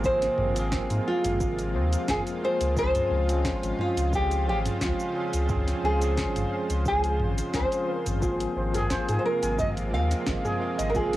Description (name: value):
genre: sunset chillout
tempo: 88 BPM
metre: 4/4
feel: swing 54% on 16ths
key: Ab major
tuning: A4 = 444 Hz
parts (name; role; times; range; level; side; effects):
- bell-like tine electric piano; accompaniment; 0.0-11.2 s; F3 to C5; -32 LUFS; moving between left 5 dB and right 4 dB; medium stereo tremolo, auto-pan, cassette tape
- lush unison pad; sustained chords; 0.0-11.2 s; C3 to C5; -33 LUFS; equal; chorus, cassette tape
- warm sub bass; bass; 0.0-11.2 s; Ab1 to Ab2; -28 LUFS; equal; none
- electronic kick drum; drums; 0.0-11.1 s; none; -33 LUFS; equal; studio reverb, cassette tape
- smooth R&B drum kit; drums; 0.0-11.2 s; cabasa, hi-hat, snare drum, toms; -33 LUFS; equal; studio reverb, cassette tape
- nylon-string guitar; melody; 0.1-11.2 s; F4 to F5; -28 LUFS; equal; cassette tape, analog delay
- steel pan; arpeggios; 8.2-11.1 s; F4 to Ab5; -32 LUFS; right 1 dB; cassette tape, tape echo
room: light reverb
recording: home recording on cassette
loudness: -24 LUFS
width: side -15 dB against mid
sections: 0.0-11.2 A section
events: none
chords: 0.0 Ab69; 2.8 Dbmaj7; 8.2 Ab69